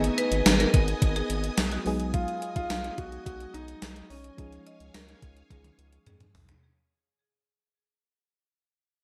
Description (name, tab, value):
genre	1980s-style pop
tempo	107 BPM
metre	4/4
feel	straight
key	Db mixolydian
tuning	A4 = 441 Hz
part	dark grand piano	melody	0.0-6.3 s	Db4 to Gb4	-41 LUFS	equal	digital delay
part	FM electric piano	accompaniment	0.0-6.7 s	F3 to Ab4	-37 LUFS	equal	none
part	string machine, violas	sustained chords	0.0-6.6 s	Cb4 to Eb6	-39 LUFS	equal	phaser, ensemble chorus
part	round analog bass	bass	0.0-6.5 s	Ab1 to F2	-35 LUFS	equal	none
part	gated 80s digital drum machine	drums	0.0-6.6 s	hi-hat, kick drum, snare drum, tambourine, toms	-28 LUFS	equal	gated reverb, gated reverb snare, overdrive
part	marimba with hard mallets	second line	0.2-6.6 s	Gb4 to Eb5	-34 LUFS	equal	digital delay
room	moderate plate reverb, RT60 1.5 s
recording	bright 1980s-style digital production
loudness	-26 LUFS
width	mono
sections	0.0-6.6 A section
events	fade-out 0.0-6.6; drum fill 5.5-6.6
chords	0.0 Abm; 1.9 Cb6; 4.4 Dbadd9